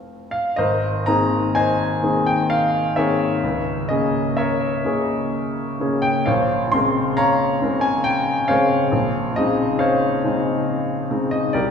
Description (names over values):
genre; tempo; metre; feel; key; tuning
classical, impressionist solo piano; 54-71 BPM; 3/4; rubato; unclear; A4 = 440 Hz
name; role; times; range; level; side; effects
clear grand piano; solo; 0.0-11.7 s; F1 to C6; -18 LUFS; left 1 dB; none
room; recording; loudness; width
wet concert hall reverb, RT60 2.2 s; heard from further back in the room, small room ambience; -18 LUFS; side -6 dB against mid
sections
0.6-11.7 A section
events
none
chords
0.0 Fmaj7; 0.6 Abadd9; 3.4 Dbm6; 6.3 Bbm9; 8.9 Dbmaj9/Bb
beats
| 0.58 1.55 2.50 | 3.43 4.37 5.33 | 6.27 7.18 8.05 | 8.94 9.81 10.68 | 11.54